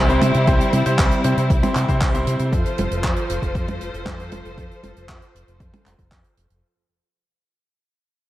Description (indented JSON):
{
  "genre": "italo disco",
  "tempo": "117 BPM",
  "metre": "4/4",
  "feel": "straight",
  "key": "unclear",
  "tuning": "A4 = 440 Hz",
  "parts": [
    { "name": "clear studio string section", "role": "sustained chords", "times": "0.0-6.6 s", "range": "F3 to C5", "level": "-24 LUFS", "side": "left 1 dB", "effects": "none" },
    { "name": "bright grand piano", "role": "stabs", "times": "0.0-2.5 s", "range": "C4 to C5", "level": "-24 LUFS", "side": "equal", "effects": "tape echo" },
    { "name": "fingered electric bass with an envelope filter", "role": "bass", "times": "0.0-6.6 s", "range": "F1 to C3", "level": "-23 LUFS", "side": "equal", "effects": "tape echo" },
    { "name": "sub drop", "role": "sound effects", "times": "0.3-0.5 s", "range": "none", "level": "barely audible", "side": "none", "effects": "none" },
    { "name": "tight funk drum kit", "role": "drums", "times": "0.1-6.6 s", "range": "handclaps, hi-hat, toms", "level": "-26 LUFS", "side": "right 1 dB", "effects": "none" },
    { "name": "electronic kick drum", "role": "drums", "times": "0.5-6.2 s", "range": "none", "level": "-21 LUFS", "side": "equal", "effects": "overdrive" }
  ],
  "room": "moderate plate reverb, RT60 1.8 s, small room ambience",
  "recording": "dreamy mix soaked in reverb",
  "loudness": "-17 LUFS",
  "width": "side -15 dB against mid",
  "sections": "0.0-6.6 A section",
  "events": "fade-out 0.0-6.6; impact 0.0-0.5",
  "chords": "0.0 C; 2.5 F"
}